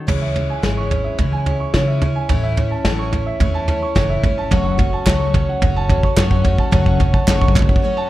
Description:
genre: indie folk with a building arrangement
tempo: 108 BPM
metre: 4/4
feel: straight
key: unclear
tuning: A4 = 440 Hz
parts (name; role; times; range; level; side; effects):
- picked twelve-string acoustic guitar; accompaniment; 0.1-8.1 s; F#2 to F#4; -23 LUFS; left 4 dB; none
- warm upright piano; arpeggios; 0.1-8.1 s; C#5 to C#6; -24 LUFS; right 5 dB; none
- upright bass; bass; 0.1-7.7 s; F#1 to C#3; -21 LUFS; equal; none
- soft brush drum kit; drums; 0.1-7.9 s; crash cymbal, kick drum, snare drum, toms; -17 LUFS; equal; none
- group handclap; percussion; 5.1-7.7 s; none; -27 LUFS; right 4 dB; none
room: light reverb, small room ambience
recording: dark, warm production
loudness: -15 LUFS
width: side -15 dB against mid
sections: 0.1-8.1 A section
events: build-up 0.1-8.1; drum fill 0.1-7.8; break 7.8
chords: 0.1 C#m; 2.3 A; 4.5 F#m

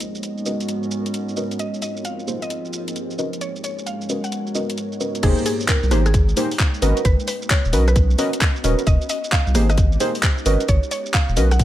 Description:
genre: UK garage, two-step garage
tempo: 132 BPM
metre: 4/4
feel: swing 65% on 16ths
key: unclear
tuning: A4 = 440 Hz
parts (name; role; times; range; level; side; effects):
- ethereal airy pad; sustained chords; 0.0-11.6 s; Ab2 to G5; -33 LUFS; left 1 dB; ensemble chorus, built-in reverb, sidechain pumping
- garage drum kit; drums; 0.0-11.6 s; crash cymbal, handclaps, hi-hat, rim click, shaker; -25 LUFS; equal; none
- warbly tape-like pad; texture; 0.0-5.2 s; Ab3 to Eb5; -28 LUFS; right 1 dB; chorus, built-in reverb, sidechain pumping
- deep mellow chord stab; stabs; 0.5-11.5 s; Bb3 to Eb5; -24 LUFS; equal; chorus
- mallet-like synth pluck; melody; 1.6-11.6 s; Ab4 to Gb5; -29 LUFS; equal; chorus
- saturated sub bass; bass; 5.2-11.6 s; Eb1 to C2; -18 LUFS; equal; sidechain pumping
- electronic kick drum; drums; 5.2-11.6 s; none; -18 LUFS; equal; none
room: light reverb, digital ambience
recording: vinyl crackle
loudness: -18 LUFS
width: side -13 dB against mid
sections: 0.0-5.2 A section; 5.2-11.6 B section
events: filter sweep on ambient pad 0.0-5.2; drop 5.2-11.6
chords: 0.0 Abm11; 1.6 Fm11; 3.2 Abm11; 5.2 Fm11 (rootless); 6.8 Abm11 (rootless); 8.9 Fm11 (rootless); 10.5 Abm11

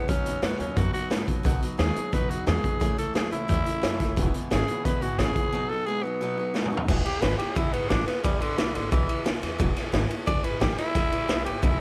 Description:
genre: rockabilly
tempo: 177 BPM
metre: 4/4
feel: straight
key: E major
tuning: A4 = 442 Hz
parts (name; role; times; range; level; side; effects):
- growling tenor saxophone; melody; 0.0-11.8 s; D3 to D5; -32 LUFS; equal; analog delay
- picked acoustic archtop guitar; accompaniment; 0.0-11.8 s; E2 to F#4; -38 LUFS; equal; plate reverb
- electric guitar through a small old amp; riff; 0.0-6.9 s; E2 to G#3; -36 LUFS; equal; spring reverb
- upright bass; bass; 0.1-11.8 s; E1 to B2; -32 LUFS; equal; none
- raw garage drum kit; drums; 0.1-11.7 s; crash cymbal, hi-hat, kick drum, ride cymbal, snare drum, toms; -29 LUFS; equal; none
room: light reverb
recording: none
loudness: -26 LUFS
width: mono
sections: 0.0-6.9 A section; 6.9-11.8 B section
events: drum fill 6.5-6.9; tenor saxophone solo 6.9-11.8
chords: 0.1 B; 2.8 A; 4.2 E; 5.5 B; 6.9 E

